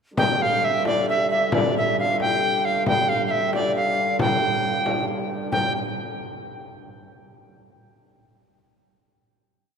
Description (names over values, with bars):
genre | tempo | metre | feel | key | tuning
medieval dance | 90 BPM (dotted quarters) | 6/8 | straight | unclear | A4 = 440 Hz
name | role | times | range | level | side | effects
bright reedy soprano recorder | melody | 0.2-5.7 s | D5 to G5 | -22 LUFS | equal | none
dark hurdy-gurdy | drone | 0.2-5.6 s | G2 to D3 | -29 LUFS | left 1 dB | none
frame drum | percussion | 0.2-5.7 s | none | -26 LUFS | left 1 dB | none
room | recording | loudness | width
wet cathedral reverb, RT60 4.0 s | recorded in a church or concert hall | -20 LUFS | side -6 dB against mid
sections
0.2-5.5 A section; 5.5-6.8 final note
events
none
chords
none